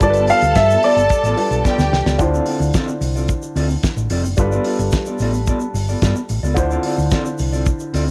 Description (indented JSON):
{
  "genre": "disco",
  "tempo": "110 BPM",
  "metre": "4/4",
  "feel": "straight",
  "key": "D dorian",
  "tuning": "A4 = 440 Hz",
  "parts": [
    { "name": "clear grand piano", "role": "melody", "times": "0.0-1.9 s", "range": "D5 to F5", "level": "-18 LUFS", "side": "equal", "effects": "none" },
    { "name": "rich studio string section", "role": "second line", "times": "0.0-2.2 s", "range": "G4 to A5", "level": "-25 LUFS", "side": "equal", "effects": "cassette tape" },
    { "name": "mellow electric guitar", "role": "accompaniment", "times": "0.0-8.1 s", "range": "B3 to D5", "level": "-27 LUFS", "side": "equal", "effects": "cassette tape" },
    { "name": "warm baby grand piano", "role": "accompaniment", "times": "0.0-8.1 s", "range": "D3 to C5", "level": "-26 LUFS", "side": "equal", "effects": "cassette tape" },
    { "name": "hollow-body short-scale fingered electric bass", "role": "bass", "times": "0.0-8.1 s", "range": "F1 to G2", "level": "-22 LUFS", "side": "equal", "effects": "none" },
    { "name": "damped 70s drum kit", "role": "drums", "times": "0.0-8.1 s", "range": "hi-hat, kick drum, snare drum", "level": "-24 LUFS", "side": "equal", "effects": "cassette tape" },
    { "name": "tube shaker", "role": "percussion", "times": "0.0-8.1 s", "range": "none", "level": "-40 LUFS", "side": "equal", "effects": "none" }
  ],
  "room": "studio ambience",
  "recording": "home recording on cassette",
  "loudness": "-18 LUFS",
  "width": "mono",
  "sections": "0.0-2.2 A section; 2.2-8.1 B section",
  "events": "drum fill 1.6-2.2",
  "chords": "0.0 G9; 2.2 Dm7; 4.4 G9; 6.6 Dm7",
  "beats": "| 0.01 0.56 1.10 1.65 | 2.19 2.74 3.29 3.83 | 4.38 4.93 5.47 6.02 | 6.57 7.12 7.66"
}